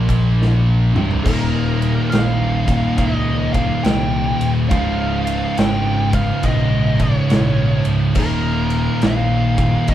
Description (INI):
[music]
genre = stoner and doom metal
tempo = 69 BPM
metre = 4/4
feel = swing 65% on 8ths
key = unclear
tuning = A4 = 440 Hz
[part]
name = scooped high-gain guitar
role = riff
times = 0.0-9.9 s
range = C2 to F4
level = -26 LUFS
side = right 1 dB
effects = distortion
[part]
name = thick fuzz guitar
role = riff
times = 0.0-9.9 s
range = C2 to Bb3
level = -22 LUFS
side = left 5 dB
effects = distortion
[part]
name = thick fuzz guitar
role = riff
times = 0.0-9.9 s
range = C2 to Bb3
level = -21 LUFS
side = right 5 dB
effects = distortion
[part]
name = overdriven picked electric bass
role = bass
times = 0.0-9.9 s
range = C1 to Db2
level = -21 LUFS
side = equal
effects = none
[part]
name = big rock drum kit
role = drums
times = 0.1-9.9 s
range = crash cymbal, kick drum, ride cymbal, snare drum, toms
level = -22 LUFS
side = equal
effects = none
[part]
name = fuzz lead guitar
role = melody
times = 1.2-9.9 s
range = Bb4 to G5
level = -24 LUFS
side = equal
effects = wah, distortion
[sound]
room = wet studio reverb, RT60 0.5 s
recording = band playing live in one room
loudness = -15 LUFS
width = side -11 dB against mid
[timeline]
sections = 0.0-1.2 A section; 1.2-9.9 B section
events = drum fill 0.4-1.2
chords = 0.0 Bb5; 0.8 C5; 1.2 Eb; 4.7 Db; 8.2 Eb